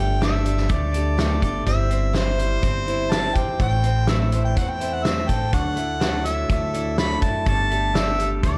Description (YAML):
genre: folk rock and heartland rock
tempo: 124 BPM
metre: 4/4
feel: straight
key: unclear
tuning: A4 = 439 Hz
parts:
  - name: mellow harmonica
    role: melody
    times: 0.0-8.6 s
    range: C5 to B5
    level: -28 LUFS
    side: equal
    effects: none
  - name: picked acoustic archtop guitar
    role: accompaniment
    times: 0.0-8.6 s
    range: A2 to C5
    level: -32 LUFS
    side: equal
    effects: none
  - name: electric guitar through a small old amp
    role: riff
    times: 0.0-8.6 s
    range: A2 to A4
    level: -32 LUFS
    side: equal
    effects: spring reverb
  - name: upright bass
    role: bass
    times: 0.0-8.6 s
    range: G1 to F#2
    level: -26 LUFS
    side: equal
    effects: none
  - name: loose indie drum kit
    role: drums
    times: 0.2-8.6 s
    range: hi-hat, kick drum, snare drum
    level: -27 LUFS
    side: equal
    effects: none
room: little or no reverb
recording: dark, warm production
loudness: -22 LUFS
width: mono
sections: 0.0-8.6 A section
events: none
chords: 0.0 Gsus2; 1.7 C/G; 3.6 Am; 5.5 Dadd9; 7.5 Gsus2